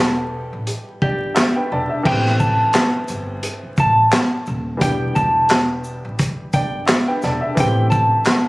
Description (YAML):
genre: hip hop, boom-bap hip-hop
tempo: 87 BPM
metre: 4/4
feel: swing 56% on 16ths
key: A minor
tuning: A4 = 441 Hz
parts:
  - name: nylon-string guitar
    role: melody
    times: 0.0-8.5 s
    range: G4 to A5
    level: -19 LUFS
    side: equal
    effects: high-pass filter, low-pass filter, digital delay
  - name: warm upright piano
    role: accompaniment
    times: 0.0-8.5 s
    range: E3 to A5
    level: -25 LUFS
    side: left 1 dB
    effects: cassette tape, high-pass filter, low-pass filter
  - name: upright bass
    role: bass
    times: 0.0-8.5 s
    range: D#1 to A1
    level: -23 LUFS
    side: equal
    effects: none
  - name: crunchy breakbeat drum kit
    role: drums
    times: 0.7-8.4 s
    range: crash cymbal, handclaps, hi-hat, kick drum, shaker, snare drum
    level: -18 LUFS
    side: equal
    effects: none
room: small room ambience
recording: recorded on a phone in the room, club reverb, vinyl crackle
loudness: -16 LUFS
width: side -21 dB against mid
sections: 0.0-2.1 A section; 2.1-8.5 B section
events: none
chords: 0.0 Em7; 2.1 Am7; 4.8 Em7; 7.6 Am7